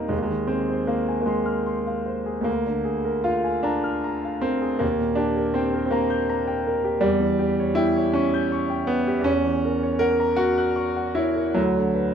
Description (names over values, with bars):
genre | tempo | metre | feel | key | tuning
classical, romantic nocturne for solo piano | 50-55 BPM (dotted quarters) | 6/8 | rubato | Eb major | A4 = 440 Hz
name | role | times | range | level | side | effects
clear concert grand piano | solo | 0.0-12.1 s | D2 to G6 | -21 LUFS | equal | none
room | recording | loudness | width
light reverb | close, detailed microphones | -21 LUFS | side -8 dB against mid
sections
0.0-12.1 A section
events
none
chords
0.1 Fm7/Eb; 2.5 Bb7/D; 4.8 Eb; 7.0 C#dim/E; 9.3 F#7/E; 11.6 Bm/D